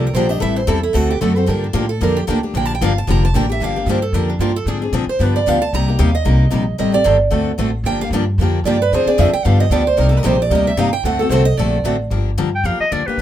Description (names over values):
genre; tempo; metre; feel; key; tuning
acoustic string swing (jazz manouche); 226 BPM; 4/4; swing 56% on 8ths; G minor; A4 = 440 Hz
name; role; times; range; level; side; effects
picked steel-string acoustic guitar; second line; 0.0-11.8 s; D4 to Bb5; -19 LUFS; right 4 dB; none
picked steel-string acoustic guitar; accompaniment; 0.0-13.2 s; C3 to A4; -21 LUFS; left 6 dB; none
picked steel-string acoustic guitar; accompaniment; 0.0-12.0 s; C3 to A4; -24 LUFS; right 5 dB; none
upright bass; bass; 0.0-13.2 s; F1 to Bb2; -18 LUFS; equal; none
bright clarinet; melody; 12.6-13.2 s; B4 to G5; -18 LUFS; left 1 dB; none
room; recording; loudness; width
moderate studio ambience, RT60 0.5 s; minimal, uncompressed stereo recording; -14 LUFS; side -11 dB against mid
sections
0.0-3.6 A section; 3.6-12.1 A section; 12.1-13.2 A section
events
steel-string acoustic guitar solo 0.0-12.1; clarinet solo 12.1-13.2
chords
0.4 Am7; 0.9 D7; 1.5 Gm7; 4.7 Dm7b5; 5.2 G7; 5.7 Cm7; 6.8 Am7b5; 7.3 D7; 7.9 Gm7; 8.9 Dm7b5; 9.5 G7; 10.0 Cm9; 11.1 D7; 12.1 Gm7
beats
0.15 | 0.42 0.68 0.95 1.22 | 1.48 1.75 2.01 2.28 | 2.54 2.81 3.07 3.34 | 3.60 3.87 4.14 4.40 | 4.67 4.93 5.20 5.47 | 5.73 6.00 6.27 6.53 | 6.80 7.06 7.33 7.60 | 7.86 8.13 8.39 8.66 | 8.93 9.19 9.46 9.72 | 9.99 10.25 10.52 10.79 | 11.05 11.32 11.58 11.85 | 12.12 12.38 12.65 12.91 | 13.18